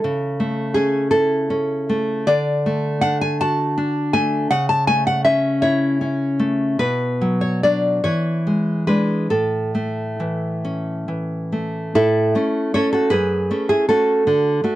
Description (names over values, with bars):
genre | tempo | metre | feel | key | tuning
romantic piece for solo classical guitar | 44-56 BPM (dotted quarters) | 6/8 | rubato | A major | A4 = 440 Hz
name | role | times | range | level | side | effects
nylon-string guitar | solo | 0.0-14.8 s | F#2 to A5 | -17 LUFS | equal | none
room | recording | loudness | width
light reverb | dry, close 1970s-style studio recording | -17 LUFS | side -15 dB against mid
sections
0.0-12.0 A section; 12.0-14.8 B section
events
none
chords
0.0 A/C#; 2.3 D; 4.5 A/C#; 6.8 Bm; 8.0 E7; 9.3 A; 13.1 F#m